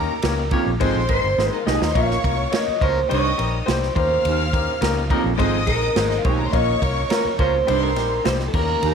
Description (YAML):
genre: uptempo 1960s-style soul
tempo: 105 BPM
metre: 4/4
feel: straight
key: Bb dorian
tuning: A4 = 440 Hz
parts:
  - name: warm studio violin section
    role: second line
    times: 0.0-8.9 s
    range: Eb4 to F6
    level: -28 LUFS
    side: equal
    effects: none
  - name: bright baby grand piano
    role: accompaniment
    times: 0.0-8.9 s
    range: G3 to Eb5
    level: -26 LUFS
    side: left 12 dB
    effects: none
  - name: vintage muted fingered electric bass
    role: bass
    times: 0.0-8.9 s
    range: G1 to Eb2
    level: -24 LUFS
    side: equal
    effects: none
  - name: bright horn section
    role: second line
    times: 0.2-7.6 s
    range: F3 to Db5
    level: -32 LUFS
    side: equal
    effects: none
  - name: swinging big-band drum kit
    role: drums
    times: 0.2-8.9 s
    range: crash cymbal, kick drum, ride cymbal, snare drum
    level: -25 LUFS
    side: right 2 dB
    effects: none
  - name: breathy baritone saxophone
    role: riff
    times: 0.5-8.9 s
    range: Eb2 to Bb2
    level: -27 LUFS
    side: right 14 dB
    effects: none
  - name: electric guitar through a small old amp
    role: melody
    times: 1.1-8.9 s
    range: A4 to F5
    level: -23 LUFS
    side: right 1 dB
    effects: phaser
room: light reverb, studio reverb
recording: 1960s-style stereo with parts hard left and right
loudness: -18 LUFS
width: side -6 dB against mid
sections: 0.0-8.9 A section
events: drum fill 1.4-1.9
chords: 0.0 Eb7; 0.8 Ab; 1.9 Bbm; 3.1 Cm; 4.0 Eb7; 5.4 Ab; 6.5 Bbm; 7.7 Cm